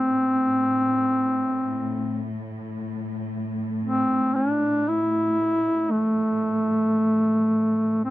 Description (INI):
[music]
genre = caucasian folk, Caucasian lament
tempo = free time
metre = none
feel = none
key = A minor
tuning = A4 = 440 Hz
[part]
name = mellow duduk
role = melody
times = 0.0-8.1 s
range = A3 to E4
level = -21 LUFS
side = equal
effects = none
[part]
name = rich studio cello section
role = drone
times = 0.0-8.1 s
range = A2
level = -30 LUFS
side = left 1 dB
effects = none
[sound]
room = light reverb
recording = dry, close 1970s-style studio recording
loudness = -21 LUFS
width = side -16 dB against mid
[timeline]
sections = 0.0-8.1 A section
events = none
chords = none